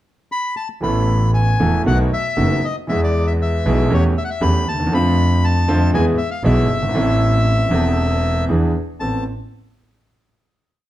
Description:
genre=tango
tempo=118 BPM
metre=4/4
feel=rubato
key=A harmonic minor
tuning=A4 = 440 Hz
part: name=bandoneon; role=melody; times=0.3-9.2 s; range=C#5 to B5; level=-22 LUFS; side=left 2 dB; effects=none
part: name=bright concert grand piano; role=accompaniment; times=0.8-9.2 s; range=E1 to A4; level=-19 LUFS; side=right 1 dB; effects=none
part: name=clear double bass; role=bass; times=0.8-9.2 s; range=E1 to F2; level=-18 LUFS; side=equal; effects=none
room=light reverb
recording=dark, warm production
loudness=-15 LUFS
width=side -14 dB against mid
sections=0.0-0.8 pickup bar; 0.8-9.0 A section; 9.0-10.9 final chord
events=none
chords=0.0 N.C.; 0.8 Asus2; 1.9 B7; 2.9 E; 3.9 A7/E; 4.9 Dm7/F; 5.9 E; 6.9 Amadd9; 8.5 E7; 9.0 Amadd9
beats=0.30 | 0.82 1.34 1.86 2.37 | 2.88 3.40 3.91 4.42 | 4.92 5.43 5.93 6.44 | 6.94 7.45 7.96 8.48 | 9.00

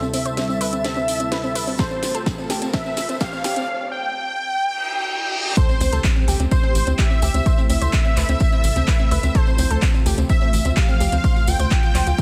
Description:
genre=progressive house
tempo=127 BPM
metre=4/4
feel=straight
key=unclear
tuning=A4 = 440 Hz
part: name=unison lead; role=melody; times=0.0-12.2 s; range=C5 to G5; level=-28 LUFS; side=equal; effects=analog chorus, dub echo
part: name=airy breathy pad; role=sustained chords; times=0.0-12.2 s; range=D2 to A4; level=-33 LUFS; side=equal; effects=chorus, phaser, sidechain pumping
part: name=analog pluck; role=arpeggios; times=0.0-12.2 s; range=C4 to C5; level=-30 LUFS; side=equal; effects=chorus, sidechain pumping, dub echo
part: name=tambourine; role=percussion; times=0.0-12.2 s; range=none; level=-37 LUFS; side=equal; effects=none
part: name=riser, reverse cymbal and impact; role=sound effects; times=1.1-7.5 s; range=none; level=-34 LUFS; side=equal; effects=none
part: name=twinkling granular texture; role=texture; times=0.0-3.7 s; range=A5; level=-44 LUFS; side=equal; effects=none
part: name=house drum kit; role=drums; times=0.1-12.2 s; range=handclaps, hi-hat, snare drum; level=-30 LUFS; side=equal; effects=high-pass filter on snare, high-pass filter on hats
part: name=electronic kick drum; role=drums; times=1.8-12.2 s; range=none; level=-21 LUFS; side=equal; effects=none
part: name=airy dreamy lead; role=second line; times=5.6-12.2 s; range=C5 to G5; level=-35 LUFS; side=equal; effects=none
part: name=tight sequencer bass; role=bass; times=5.8-12.1 s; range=A1 to D2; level=-22 LUFS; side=equal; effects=sidechain pumping
room=light reverb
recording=dense, heavily limited modern master, high-pass filter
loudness=-20 LUFS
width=mono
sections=0.0-5.6 A section; 5.6-12.2 B section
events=build-up 0.0-5.6; drum fill 0.0-3.7; filter sweep on synth pluck 0.0-5.6; filter sweep on analog synth lead 0.0-5.6; filter sweep 0.0-5.6; reverse cymbal 4.8-5.6; drop 5.6-12.2; impact 5.6-7.5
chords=0.0 C6/D; 1.8 F/D; 5.6 C6; 9.3 F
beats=0.37 0.85 1.32 | 1.79 2.26 2.74 3.21 | 3.68 4.15 4.62 5.10 | 5.57 6.04 6.51 6.99 | 7.46 7.93 8.40 8.88 | 9.35 9.82 10.29 10.77 | 11.24 11.71 12.18

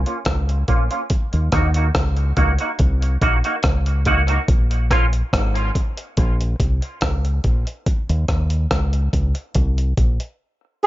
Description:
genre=dub reggae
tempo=71 BPM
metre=4/4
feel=straight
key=unclear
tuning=A4 = 440 Hz
part: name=deep dub fingered electric bass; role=bass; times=0.0-10.2 s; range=Ab1 to Eb2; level=-19 LUFS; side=equal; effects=none
part: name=semi-hollow electric guitar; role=accompaniment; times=0.1-5.0 s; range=Bb3 to Gb4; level=-23 LUFS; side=right 2 dB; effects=ensemble chorus, low-pass filter, tape echo
part: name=breakbeat sampler-style drum kit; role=drums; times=0.1-10.4 s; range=hi-hat, kick drum, rim click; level=-21 LUFS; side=equal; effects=none
room=little or no reverb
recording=nothing above 7.5 kHz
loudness=-17 LUFS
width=side -16 dB against mid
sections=0.0-10.9 A section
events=none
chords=0.0 Bbm; 1.1 Ebm; 4.5 Bbm; 7.9 Eb5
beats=0.26 | 1.10 1.95 2.79 3.63 | 4.48 5.33 6.17 7.02 | 7.86 8.71 9.55

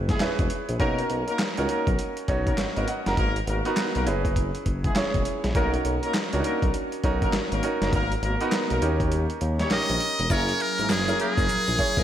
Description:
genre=R&B, new jack swing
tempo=101 BPM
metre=4/4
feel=swing 62% on 16ths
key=unclear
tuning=A4 = 444 Hz
part: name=clear concert grand piano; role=accompaniment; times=0.0-12.0 s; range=B3 to A#5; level=-28 LUFS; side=right 2 dB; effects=tube saturation, slapback echo
part: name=smooth synth bass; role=bass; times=0.0-12.0 s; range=E1 to D#2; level=-28 LUFS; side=equal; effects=none
part: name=warm horn section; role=stabs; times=0.1-12.0 s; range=G#3 to C#5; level=-32 LUFS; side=left 2 dB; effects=slapback echo, ping-pong delay
part: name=dusty soul sampler-style drum kit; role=drums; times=0.1-12.0 s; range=handclaps, hi-hat, kick drum, snare drum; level=-27 LUFS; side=equal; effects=overdrive
part: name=trumpet with metal mute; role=melody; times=9.7-12.0 s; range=G#4 to D#5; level=-24 LUFS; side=equal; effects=none
part: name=phased analog pad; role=sustained chords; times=10.3-12.0 s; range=F#3 to A#4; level=-32 LUFS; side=right 1 dB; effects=phaser, chorus
part: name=tube shaker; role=percussion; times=10.3-12.0 s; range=none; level=-45 LUFS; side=left 8 dB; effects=none
room=moderate lush hall reverb, RT60 1.8 s, studio ambience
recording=big arena sound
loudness=-22 LUFS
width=side -10 dB against mid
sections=0.0-10.3 A section; 10.3-12.0 B section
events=kick muted 9.1-10.3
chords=0.0 F#9sus4; 0.8 Bmaj9; 3.2 G#m9; 4.1 F#9sus4; 5.5 Bmaj9; 7.9 G#m9; 8.8 D#7; 10.3 F#9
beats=0.20 | 0.80 1.39 1.99 2.58 | 3.17 3.77 4.36 4.96 | 5.55 6.14 6.74 7.33 | 7.93 8.52 9.11 9.71 | 10.30 10.90 11.49

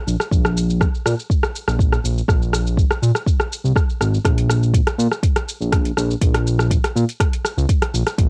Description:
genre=afro house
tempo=122 BPM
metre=4/4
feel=straight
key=Bb minor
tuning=A4 = 441 Hz
part: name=smooth synth bass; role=bass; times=0.1-8.3 s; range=Ab1 to Bb2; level=-21 LUFS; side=equal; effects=sidechain pumping
part: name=afro-pop drum kit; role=drums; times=0.1-8.3 s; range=hi-hat, rim click, shaker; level=-25 LUFS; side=equal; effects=cassette tape
part: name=electronic kick drum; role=drums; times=0.3-8.3 s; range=none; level=-20 LUFS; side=equal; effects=cassette tape
room=little or no reverb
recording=home recording on cassette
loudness=-19 LUFS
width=mono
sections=0.0-8.3 A section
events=none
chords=none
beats=| 0.32 0.81 1.30 1.79 | 2.28 2.77 3.27 3.76 | 4.25 4.74 5.23 5.72 | 6.22 6.71 7.20 7.69 | 8.18

